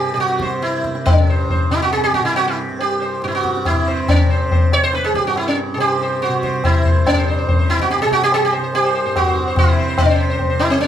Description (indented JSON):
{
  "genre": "indian classical, Hindustani",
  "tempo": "141 BPM",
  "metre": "7/4",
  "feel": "straight",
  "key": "unclear",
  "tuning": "A4 = 440 Hz",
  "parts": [
    { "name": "sitar", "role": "melody", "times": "0.0-10.9 s", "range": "C4 to Db5", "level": "-17 LUFS", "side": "right 1 dB", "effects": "none" },
    { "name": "tanpura", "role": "drone", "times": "0.0-10.9 s", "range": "C2 to C3", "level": "-24 LUFS", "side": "right 2 dB", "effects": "none" },
    { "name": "tabla", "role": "percussion", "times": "0.2-10.9 s", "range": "none", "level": "-18 LUFS", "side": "left 1 dB", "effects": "none" }
  ],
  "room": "wet large studio reverb, RT60 0.9 s",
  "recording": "band playing live in one room",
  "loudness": "-14 LUFS",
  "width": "side -10 dB against mid",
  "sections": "0.0-7.1 A section; 7.1-10.9 B section",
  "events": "speeding up 0.0-10.9",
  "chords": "none",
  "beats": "0.19 0.63 | 1.06 1.50 1.93 2.37 2.80 3.23 3.66 | 4.09 4.52 4.94 5.37 5.79 6.22 6.64 | 7.06 7.48 7.90 8.32 8.74 9.15 9.57 | 9.98 10.39 10.80"
}